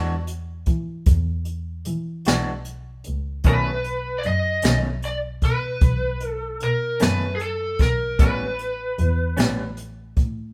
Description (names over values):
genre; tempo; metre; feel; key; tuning
slow blues; 51 BPM (dotted quarters); 12/8; straight; unclear; A4 = 443 Hz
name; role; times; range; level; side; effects
lead guitar through a small cranked amp; melody; 0.0-9.7 s; G#4 to D#5; -28 LUFS; equal; overdrive
electric guitar through a small old amp; accompaniment; 0.0-9.6 s; A2 to F#4; -29 LUFS; equal; tremolo
dark double bass; bass; 0.0-10.5 s; A1 to E3; -28 LUFS; equal; none
jazz brush drum kit; drums; 0.3-10.4 s; hi-hat, kick drum, snare drum; -22 LUFS; equal; none
room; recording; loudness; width
light reverb; band playing live in one room; -23 LUFS; mono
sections
0.0-10.5 A section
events
none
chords
0.0 E5; 3.5 B9; 8.2 A9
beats
1.08 2.27 | 3.46 4.64 5.83 7.01 | 8.20 9.39